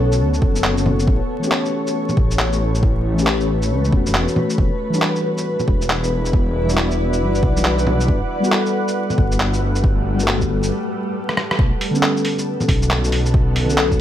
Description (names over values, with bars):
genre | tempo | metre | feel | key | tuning
future garage | 137 BPM | 4/4 | swing 63% on 16ths | unclear | A4 = 439 Hz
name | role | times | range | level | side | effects
muted felt-like synth keys | accompaniment | 0.0-14.0 s | D3 to A4 | -23 LUFS | left 2 dB | chorus, sidechain pumping, low-pass filter, digital delay
granular cloud pad | sustained chords | 0.0-14.0 s | G3 to F#5 | -23 LUFS | equal | built-in reverb, sidechain pumping
swelling detuned saw bass | bass | 0.0-14.0 s | E1 to D2 | -20 LUFS | equal | sidechain pumping
lo-fi sampler-style drum kit | drums | 0.1-14.0 s | bongos, handclaps, hi-hat, rim click, shaker | -22 LUFS | equal | none
electronic kick drum | drums | 0.4-14.0 s | none | -18 LUFS | equal | overdrive
room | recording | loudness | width
light reverb | vinyl crackle | -16 LUFS | side -11 dB against mid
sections
0.0-11.6 A section; 11.6-14.0 B section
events
filter sweep on synth keys 0.0-11.6; break 10.7-11.6; drum fill 11.3-11.6; band accent 11.5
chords
0.0 Bm9; 1.1 A7; 4.6 Em9; 8.1 Gmaj9; 11.6 Bm9